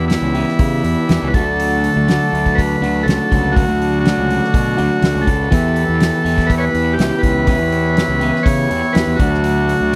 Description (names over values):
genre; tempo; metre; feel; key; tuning
psychedelic rock; 122 BPM; 4/4; straight; E dorian; A4 = 436 Hz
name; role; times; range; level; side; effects
combo organ; melody; 0.0-10.0 s; E4 to C#5; -22 LUFS; equal; slapback echo
hand-pumped harmonium; sustained chords; 0.0-10.0 s; F#4 to B5; -29 LUFS; equal; none
electric guitar at the edge of break-up; riff; 0.0-10.0 s; D3 to G4; -21 LUFS; equal; phaser
fuzz fingered electric bass; bass; 0.0-10.0 s; C#2 to C#3; -22 LUFS; equal; overdrive
soft-mallet drum kit; drums; 0.1-9.8 s; hi-hat, kick drum, snare drum; -21 LUFS; equal; none
room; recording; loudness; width
light reverb; dry, close 1970s-style studio recording; -16 LUFS; mono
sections
0.0-10.0 A section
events
none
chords
0.0 Em; 1.3 D; 5.5 Em; 9.2 D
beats
0.10 0.59 1.09 | 1.58 2.07 2.57 3.06 | 3.55 4.05 4.54 5.03 | 5.52 6.01 6.51 7.00 | 7.49 7.98 8.47 8.96 | 9.45 9.94